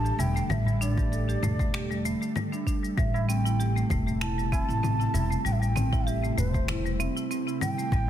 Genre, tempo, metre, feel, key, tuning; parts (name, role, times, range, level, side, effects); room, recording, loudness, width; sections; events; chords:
organic downtempo; 97 BPM; 4/4; swing 54% on 16ths; A minor pentatonic; A4 = 441 Hz
mellow bansuri; melody; 0.0-8.1 s; C5 to A5; -34 LUFS; right 2 dB; ping-pong delay
ethereal airy pad; sustained chords; 0.0-8.1 s; C3 to A4; -35 LUFS; right 1 dB; ensemble chorus, built-in reverb, sidechain pumping
marimba with hard mallets; arpeggios; 0.0-8.1 s; G3 to A4; -32 LUFS; equal; ping-pong delay
upright bass; bass; 0.0-8.1 s; E1 to A1; -28 LUFS; equal
electronic cabasa, congas and finger snaps; drums; 0.1-8.1 s; -35 LUFS; left 2 dB; studio reverb, soft clipping on snare
tabla; percussion; 0.2-7.6 s; -37 LUFS; right 1 dB
electronic kick drum; drums; 1.0-8.1 s; -28 LUFS; equal; overdrive, studio reverb
light reverb, small room ambience; dense, heavily limited modern master; -24 LUFS; side -11 dB against mid
0.0-8.1 A section
0.0 Gsus2; 3.0 Am7